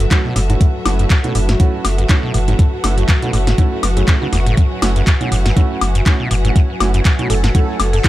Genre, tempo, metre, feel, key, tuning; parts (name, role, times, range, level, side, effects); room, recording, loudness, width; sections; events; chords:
acid house; 121 BPM; 4/4; swing 56% on 16ths; F# minor; A4 = 439 Hz
plucky unison lead; melody; 0.0-0.1, 7.3-8.1 s; A4; -25 LUFS; right 1 dB; wide subtle chorus, dub echo
warm analog pad; sustained chords; 0.0-8.1 s; F#3 to G#5; -26 LUFS; equal; chorus, sidechain pumping
acid bass, saw; riff; 0.0-8.0 s; E2 to C#3; -21 LUFS; equal; overdrive, sidechain pumping, dub echo
warm sub bass; bass; 0.0-8.0 s; F#1; -17 LUFS; equal; tube saturation, sidechain pumping
electro analog drum machine; drums; 0.0-8.1 s; handclaps, hi-hat, snare drum, woodblock; -21 LUFS; left 2 dB; tape echo
rich studio string section; texture; 0.0-8.1 s; F#4 to F#5; -27 LUFS; equal; sidechain pumping
warm concert grand piano; stabs; 0.1-8.1 s; A3 to G#4; -24 LUFS; right 6 dB; tape echo
electronic kick drum; drums; 0.1-8.1 s; -12 LUFS; equal
little or no reverb; echo-heavy mix; -12 LUFS; side -15 dB against mid
0.0-8.1 A section
0.0 F#m7